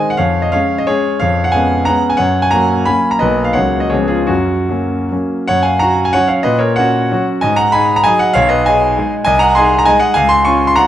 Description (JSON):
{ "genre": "classical, romantic triple-time dance for piano with dotted rhythms", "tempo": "140-209 BPM", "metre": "3/4", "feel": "rubato", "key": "F# major", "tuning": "A4 = 439 Hz", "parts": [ { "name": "warm concert grand piano", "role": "solo", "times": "0.0-10.9 s", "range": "B1 to Db6", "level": "-11 LUFS", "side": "equal", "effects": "none" } ], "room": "moderate recital hall reverb, RT60 1.6 s", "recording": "none", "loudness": "-11 LUFS", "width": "side -12 dB against mid", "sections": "0.0-5.5 A section; 5.5-10.9 B section", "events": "none", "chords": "0.2 Db/F; 1.2 C#7/E#; 2.2 F#; 3.2 Bmaj7; 3.5 F#/C#; 3.9 C#7; 4.3 F#; 5.5 F#5; 6.5 F#/A#; 7.4 G#5; 8.4 G#m/B; 9.3 Ab/C; 10.2 Db" }